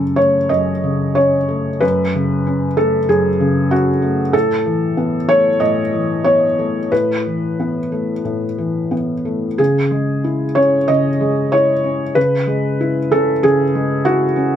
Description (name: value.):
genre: neoclassical minimalist piano.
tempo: 88-99 BPM.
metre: 4/4.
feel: rubato.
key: C# minor.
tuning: A4 = 440 Hz.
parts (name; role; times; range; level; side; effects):
felt-muted upright piano; solo; 0.0-14.6 s; F#2 to D#5; -14 LUFS; equal; none.
room: light reverb.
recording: none.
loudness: -14 LUFS.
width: side -10 dB against mid.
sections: 0.0-14.6 A section.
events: none.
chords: 0.0 F#m; 4.3 Asus2; 9.6 C#m.